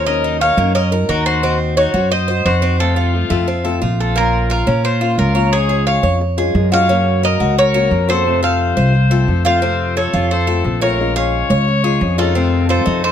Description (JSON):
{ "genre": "latin", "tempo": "176 BPM", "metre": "4/4", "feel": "straight", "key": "Bb minor from 4.2 s", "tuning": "A4 = 439 Hz", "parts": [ { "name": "Cuban tres", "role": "melody", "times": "0.0-13.1 s", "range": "A4 to F5", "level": "-18 LUFS", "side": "right 1 dB", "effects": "none" }, { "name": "bright trumpet", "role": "second line", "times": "0.0-13.1 s", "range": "F4 to Db5", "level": "-23 LUFS", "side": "left 8 dB", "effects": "none" }, { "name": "picked old ladder-braced acoustic guitar", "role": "accompaniment", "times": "0.0-13.1 s", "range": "C3 to C5", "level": "-22 LUFS", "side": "left 7 dB", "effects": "none" }, { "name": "Cuban tres", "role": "arpeggios", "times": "0.0-13.1 s", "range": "A3 to Db5", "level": "-21 LUFS", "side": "right 2 dB", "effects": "none" }, { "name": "upright bass", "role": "bass", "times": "0.0-13.1 s", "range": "Bb1 to Bb2", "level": "-17 LUFS", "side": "equal", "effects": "none" } ], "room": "light reverb", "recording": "close, detailed microphones", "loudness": "-13 LUFS", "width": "side -9 dB against mid", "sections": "0.0-4.2 A section; 4.2-13.1 B section", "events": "none", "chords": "0.1 Ebm7; 1.4 Cdim/Eb; 2.8 F; 4.2 Bbm; 5.5 Db; 6.9 Gb; 8.3 F; 11.0 Bbm7; 12.4 F7", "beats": "| 0.07 0.41 0.75 1.09 | 1.43 1.77 2.11 2.46 | 2.80 3.14 3.48 3.82 | 4.16 4.50 4.84 5.18 | 5.53 5.87 6.21 6.55 | 6.89 7.23 7.57 7.92 | 8.26 8.60 8.94 9.28 | 9.62 9.96 10.31 10.65 | 10.99 11.33 11.67 12.01 | 12.35 12.70 13.04" }